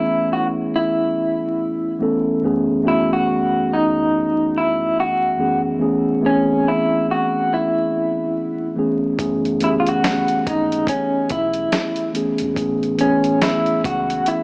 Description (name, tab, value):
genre	lo-fi hip hop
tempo	71 BPM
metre	4/4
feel	swing 59% on 16ths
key	F# dorian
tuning	A4 = 440 Hz
part	electric guitar through a small old amp	melody	0.0-14.4 s	C#4 to F#4	-22 LUFS	equal	tremolo, low-pass filter
part	mellow tine electric piano	accompaniment	0.0-14.4 s	F#2 to A4	-22 LUFS	equal	cassette tape, low-pass filter
part	deep dub fingered electric bass	bass	9.2-14.2 s	E1 to C#2	-38 LUFS	equal	none
part	dusty soul sampler-style drum kit	drums	9.2-14.4 s	hi-hat, kick drum, snare drum	-27 LUFS	equal	overdrive
room	light reverb, digital ambience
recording	vinyl crackle, small speaker sound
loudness	-19 LUFS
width	mono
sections	0.0-14.4 A section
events	none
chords	0.0 Amaj7; 2.4 F#m11; 5.8 Amaj7; 9.2 F#m11; 12.6 Amaj7